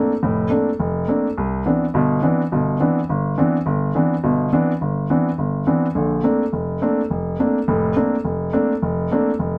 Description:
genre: jazz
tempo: 209 BPM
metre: 4/4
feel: swing 61% on 8ths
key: Bb major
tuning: A4 = 440 Hz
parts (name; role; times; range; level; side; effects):
- warm grand piano; solo; 0.0-9.6 s; F1 to D4; -20 LUFS; equal; none
room: light reverb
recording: none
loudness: -20 LUFS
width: mono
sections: 0.0-9.6 A section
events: none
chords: 0.0 Bbmaj9; 1.4 Cmaj9; 6.0 Bbmaj9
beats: | 0.21 0.50 0.79 1.07 | 1.36 1.65 1.93 2.22 | 2.51 2.79 3.08 3.37 | 3.65 3.94 4.23 4.52 | 4.80 5.09 5.38 5.66 | 5.95 6.24 6.52 6.81 | 7.10 7.38 7.67 7.96 | 8.24 8.53 8.82 9.11 | 9.39

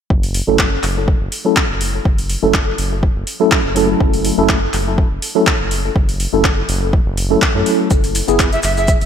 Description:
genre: deep house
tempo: 123 BPM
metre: 4/4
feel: swing 54% on 16ths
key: F# minor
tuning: A4 = 440 Hz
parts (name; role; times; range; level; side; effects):
- round analog bass; bass; 0.1-9.1 s; F#1 to F#2; -21 LUFS; equal; sidechain pumping
- electronic kick drum; drums; 0.1-9.0 s; none; -16 LUFS; equal; none
- deep house drum kit; drums; 0.2-9.1 s; handclaps, hi-hat; -20 LUFS; equal; none
- mellow tine electric piano; stabs; 0.5-8.5 s; F#3 to A4; -17 LUFS; equal; medium stereo tremolo, sidechain pumping, low-pass filter, ping-pong delay
- maracas; percussion; 7.9-9.1 s; none; -27 LUFS; left 2 dB; none
- breathy bright jazz flute; melody; 8.5-8.9 s; E5; -18 LUFS; right 3 dB; none
room: light reverb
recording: none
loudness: -13 LUFS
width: side -8 dB against mid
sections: 0.1-9.1 A section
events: filter sweep on tine electric piano 0.1-9.1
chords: 0.1 F#m7; 7.9 E/F#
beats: | 0.10 0.59 1.08 1.57 | 2.05 2.54 3.03 3.52 | 4.00 4.49 4.98 5.47 | 5.96 6.44 6.93 7.42 | 7.91 8.39 8.88

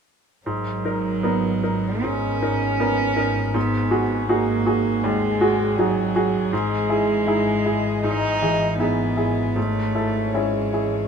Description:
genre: neoclassical piano and strings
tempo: 79 BPM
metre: 4/4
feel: rubato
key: unclear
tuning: A4 = 442 Hz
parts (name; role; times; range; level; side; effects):
- dark chamber string section; sustained chords; 0.4-11.1 s; E3 to D#5; -32 LUFS; left 5 dB; none
- rich cello; second line; 0.5-11.1 s; F#3 to D#4; -23 LUFS; right 2 dB; none
- bright upright piano; accompaniment; 0.5-11.1 s; D#2 to A#4; -23 LUFS; right 1 dB; none
- rich double bass; bass; 0.5-11.1 s; G#1; -28 LUFS; left 2 dB; none
room: light reverb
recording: minimal, uncompressed stereo recording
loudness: -19 LUFS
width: side -6 dB against mid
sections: 0.5-11.1 A section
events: none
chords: 0.5 Bmaj7/G#; 3.6 G#m7; 6.5 Emaj7/G#; 9.6 Amaj7/G#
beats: | 0.46 1.24 2.04 2.80 | 3.55 4.30 5.04 5.78 | 6.52 7.26 8.03 8.80 | 9.56 10.35

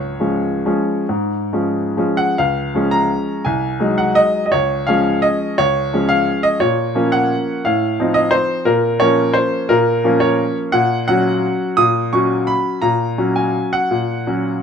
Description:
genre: classical, piano waltz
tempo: 131-186 BPM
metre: 3/4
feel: rubato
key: Db major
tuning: A4 = 440 Hz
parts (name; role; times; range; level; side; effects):
- clear upright piano; solo; 0.0-14.6 s; C2 to D#6; -15 LUFS; equal; none
room: light reverb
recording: minimal, uncompressed stereo recording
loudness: -15 LUFS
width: side -7 dB against mid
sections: 0.0-2.4 A section; 2.4-14.6 B section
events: none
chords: 0.0 Db; 3.4 Ab7/C; 4.5 Db; 6.6 Bbm; 7.7 F7/A; 8.7 Bbm; 10.7 F#/A#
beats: 0.20 0.65 | 1.09 1.52 1.96 | 2.37 2.73 3.10 | 3.45 3.79 4.17 | 4.53 4.88 5.23 | 5.59 5.93 6.28 | 6.61 6.95 7.31 | 7.65 7.98 8.33 | 8.67 9.00 9.35 | 9.70 10.04 10.40 | 10.75 11.09 11.44 | 11.79 12.13 12.48 | 12.83 13.18 13.55 | 13.92 14.28

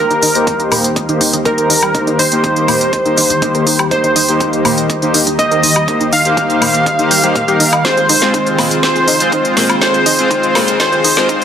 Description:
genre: progressive house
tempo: 122 BPM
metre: 4/4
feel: straight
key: Eb major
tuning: A4 = 440 Hz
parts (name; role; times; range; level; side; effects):
- wide unison lead; melody; 0.0-11.4 s; Bb4 to F5; -16 LUFS; equal; sidechain pumping, dub echo
- glassy wavetable pluck; second line; 0.0-11.4 s; Bb4 to F5; -21 LUFS; right 2 dB; none
- lush unison pad; sustained chords; 0.2-11.4 s; Eb3 to Eb5; -21 LUFS; left 1 dB; chorus, phaser, sidechain pumping
- analog pluck; arpeggios; 0.0-11.3 s; Bb3 to Eb5; -20 LUFS; right 1 dB; chorus, sidechain pumping, digital delay
- soft supersaw; stabs; 0.0-11.4 s; Ab3 to C5; -17 LUFS; left 1 dB; sidechain pumping, low-pass filter, digital delay
- deep house drum kit; drums; 0.1-11.4 s; hi-hat, snare drum, woodblock; -15 LUFS; equal; none
- electronic kick drum; drums; 0.5-11.4 s; none; -23 LUFS; right 1 dB; high-pass filter on kick
room: moderate lush hall reverb, RT60 2.4 s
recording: dense, heavily limited modern master, high-pass filter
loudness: -10 LUFS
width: side -8 dB against mid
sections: 0.0-11.4 A section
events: build-up 0.0-11.4; filter sweep on supersaw synth 0.0-11.4; filter sweep on analog synth pad 0.0-11.4; drum fill 7.8-11.4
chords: 0.0 Eb6; 7.8 Fm/Eb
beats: 0.47 0.96 1.45 | 1.95 2.44 2.93 3.42 | 3.91 4.41 4.90 5.39 | 5.88 6.37 6.86 7.36 | 7.85 8.34 8.83 9.32 | 9.81 10.31 10.80 11.29

